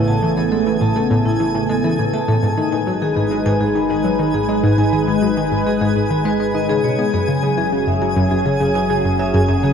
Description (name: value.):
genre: ambient.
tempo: 102 BPM.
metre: 4/4.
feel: straight.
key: unclear.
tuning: A4 = 441 Hz.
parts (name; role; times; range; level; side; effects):
phased analog pad; sustained chords; 0.0-9.7 s; C#3 to B4; -20 LUFS; equal; phaser, chorus.
vibraphone with medium hard mallets; arpeggios; 0.0-9.7 s; D#4 to A5; -22 LUFS; moving between left 6 dB and right 2 dB; auto-pan, ping-pong delay.
fat analog bass; bass; 0.0-9.7 s; F#1 to A1; -34 LUFS; equal; none.
twinkling granular texture; texture; 0.0-9.7 s; G#4 to G#5; -27 LUFS; equal; built-in reverb.
analog pluck; riff; 0.1-9.7 s; F#2 to B3; -19 LUFS; equal; chorus, ping-pong delay.
room: wet huge ambient reverb, RT60 7.3 s.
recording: dark, warm production.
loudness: -15 LUFS.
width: side -7 dB against mid.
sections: 0.0-9.7 A section.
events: fade-in on analog synth bass 0.0-9.7.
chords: 0.0 Aadd9; 2.4 G#m; 7.1 F#sus2.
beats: | 0.08 0.67 1.25 1.84 | 2.43 3.02 3.61 4.19 | 4.78 5.37 5.96 6.55 | 7.13 7.72 8.31 8.90 | 9.49.